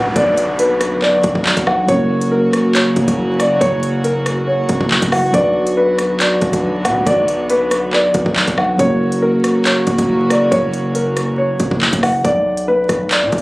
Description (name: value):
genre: hip hop, drill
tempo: 139 BPM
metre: 4/4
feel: half-time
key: B harmonic minor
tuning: A4 = 438 Hz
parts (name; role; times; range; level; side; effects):
- dark grand piano; melody; 0.0-13.4 s; A#4 to F#5; -17 LUFS; equal; tape echo
- mellow tine electric piano; accompaniment; 0.0-12.3 s; F#3 to B4; -20 LUFS; equal; none
- dark chamber string section; sustained chords; 0.0-12.2 s; C#3 to F#4; -22 LUFS; equal; none
- distorted 808-style bass; bass; 0.0-13.4 s; F#1 to B2; -22 LUFS; equal; distortion
- downlifter; sound effects; 0.0-1.9 s; none; -30 LUFS; equal; none
- drill drum kit; drums; 0.2-13.4 s; handclaps, hi-hat, kick drum, rim click; -18 LUFS; equal; none
room: little or no reverb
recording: recorded on a phone in the room, club reverb, vinyl crackle, compression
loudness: -13 LUFS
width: side -21 dB against mid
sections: 0.0-12.2 A section; 12.2-13.4 B section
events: none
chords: 0.0 Bm; 1.9 F#; 5.3 Bm; 8.8 F#; 12.2 Bm